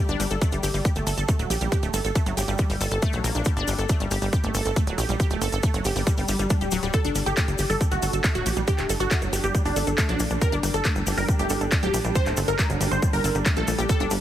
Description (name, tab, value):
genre	psychedelic trance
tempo	138 BPM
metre	4/4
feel	straight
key	G harmonic minor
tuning	A4 = 440 Hz
part	wide unison pluck	riff	0.0-14.2 s	F#3 to A4	-29 LUFS	moving between left 6 dB and right 7 dB	auto-pan, sidechain pumping, dub echo
part	plucky analog bass	bass	0.1-14.2 s	D1 to Bb1	-26 LUFS	equal	none
part	drum and bass drum kit	drums	0.1-14.2 s	handclaps, hi-hat	-31 LUFS	equal	overdrive
part	tube shaker	percussion	0.1-14.2 s	none	-35 LUFS	left 4 dB	none
part	electronic kick drum	drums	0.4-14.0 s	none	-23 LUFS	equal	none
part	swell	sound effects	6.2-6.9 s	none	-33 LUFS	equal	none
part	supersaw stab	melody	6.9-14.0 s	D4 to C5	-28 LUFS	right 1 dB	phaser, sidechain pumping, dub echo
part	evolving wavetable pad	sustained chords	8.0-14.2 s	G3 to G4	-34 LUFS	right 2 dB	chorus, built-in reverb, sidechain pumping
room	light reverb, digital ambience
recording	heavily compressed radio sound, multiband compression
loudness	-21 LUFS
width	side -12 dB against mid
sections	0.0-14.2 A section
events	swell 6.2-6.9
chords	0.0 G5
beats	0.41 0.85 1.28 | 1.72 2.15 2.59 3.02 | 3.46 3.89 4.33 4.76 | 5.20 5.63 6.07 6.50 | 6.94 7.37 7.81 8.24 | 8.68 9.11 9.55 9.98 | 10.41 10.85 11.29 11.72 | 12.15 12.59 13.02 13.46 | 13.89